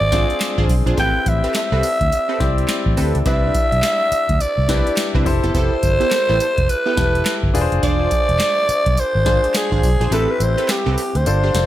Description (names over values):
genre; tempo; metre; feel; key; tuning
R&B, new jack swing; 105 BPM; 4/4; swing 61% on 16ths; unclear; A4 = 441 Hz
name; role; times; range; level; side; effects
growling alto saxophone; melody; 0.0-11.7 s; G4 to G5; -19 LUFS; right 1 dB; none
warm concert grand piano; accompaniment; 0.0-11.7 s; C4 to D5; -24 LUFS; left 5 dB; none
vintage muted fingered electric bass; bass; 0.0-11.7 s; E1 to D2; -20 LUFS; equal; none
funky polysynth comp; stabs; 0.1-11.6 s; B3 to C5; -26 LUFS; right 3 dB; chorus
booming analog drum machine; drums; 0.1-11.7 s; handclaps, hi-hat, kick drum, snare drum, tambourine; -21 LUFS; equal; gated reverb
room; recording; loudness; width
light reverb; none; -15 LUFS; side -13 dB against mid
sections
0.0-11.7 A section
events
kick muted 10.1-11.7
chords
0.0 E7b9b13 (rootless); 1.0 Am9; 3.3 Cmaj9; 5.3 Fmaj9#11; 7.5 E7b9b13; 10.1 Am9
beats
0.40 | 0.97 1.54 2.12 2.69 | 3.26 3.83 4.40 4.97 | 5.54 6.12 6.69 7.26 | 7.83 8.40 8.97 9.54 | 10.12 10.69 11.26